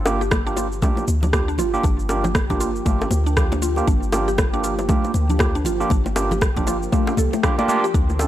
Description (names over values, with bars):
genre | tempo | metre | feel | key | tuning
afro house | 118 BPM | 4/4 | swing 59% on 16ths | unclear | A4 = 438 Hz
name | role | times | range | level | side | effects
warm analog pad | sustained chords | 0.0-8.3 s | D3 to G4 | -31 LUFS | equal | chorus, sidechain pumping
warm 808-style bass | bass | 0.0-8.3 s | G1 to D2 | -24 LUFS | equal | sidechain pumping
overdriven tine electric piano | stabs | 0.1-8.3 s | Bb3 to A4 | -25 LUFS | right 2 dB | sidechain pumping, analog delay
electronic shaker and rim click | drums | 0.1-8.3 s | none | -26 LUFS | right 1 dB | overdrive, small room ambience
bongos | percussion | 0.1-8.3 s | none | -27 LUFS | left 1 dB | none
mallet-like synth pluck | arpeggios | 0.2-8.1 s | A3 to D5 | -27 LUFS | equal | chorus, phaser, sidechain pumping, analog delay
electronic kick drum | drums | 0.3-8.1 s | none | -21 LUFS | equal | overdrive, small room ambience
congas | percussion | 0.3-8.1 s | none | -28 LUFS | left 2 dB | none
room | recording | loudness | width
little or no reverb | dry, gritty hardware recording | -18 LUFS | side -12 dB against mid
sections
0.0-8.3 A section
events
none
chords
0.0 Gm7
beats
0.32 0.82 1.33 | 1.84 2.35 2.86 3.37 | 3.88 4.38 4.89 5.40 | 5.91 6.42 6.92 7.43 | 7.94